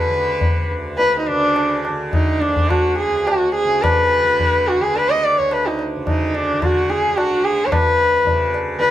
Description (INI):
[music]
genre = indian classical, Hindustani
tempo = 107 BPM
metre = 7/4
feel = straight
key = D raga marwa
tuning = A4 = 442 Hz
[part]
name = rich sarangi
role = melody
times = 0.0-8.9 s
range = D4 to Eb5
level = -16 LUFS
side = equal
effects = plate reverb
[part]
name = tanpura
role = drone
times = 0.0-8.9 s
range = D2 to D3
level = -26 LUFS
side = right 1 dB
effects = none
[part]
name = tabla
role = percussion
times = 0.4-8.9 s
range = none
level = -22 LUFS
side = left 1 dB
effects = none
[sound]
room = light reverb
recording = none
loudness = -15 LUFS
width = side -12 dB against mid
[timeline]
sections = 0.0-8.9 A section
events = speeding up 0.0-8.9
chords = none